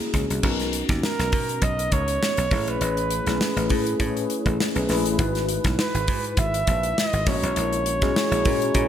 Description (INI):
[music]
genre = polished 1980s jazz-funk pop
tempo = 101 BPM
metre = 4/4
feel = swing 54% on 16ths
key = unclear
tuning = A4 = 442 Hz
[part]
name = mellow tine electric piano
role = accompaniment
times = 0.0-8.9 s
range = G#3 to C#5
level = -26 LUFS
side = left 2 dB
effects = slow stereo tremolo, ensemble chorus
[part]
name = modern studio drum kit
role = drums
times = 0.0-8.9 s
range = crash cymbal, hi-hat, kick drum, snare drum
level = -25 LUFS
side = equal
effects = none
[part]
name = dry thumbed slap bass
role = bass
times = 0.1-8.9 s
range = G#1 to B2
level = -27 LUFS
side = equal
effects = none
[part]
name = warm flugelhorn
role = melody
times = 1.0-8.9 s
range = A#4 to E5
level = -26 LUFS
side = right 1 dB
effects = none
[sound]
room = moderate lush hall reverb, RT60 2.6 s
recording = bright 1980s-style digital production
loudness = -20 LUFS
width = side -10 dB against mid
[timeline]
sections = 0.4-8.9 A section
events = none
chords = 0.4 Bmaj7; 2.5 Amaj9; 5.2 Emaj7/G#; 7.3 F#9/A#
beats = | 0.44 1.03 1.63 2.22 | 2.81 3.41 4.00 4.60 | 5.19 5.79 6.38 6.97 | 7.57 8.16 8.75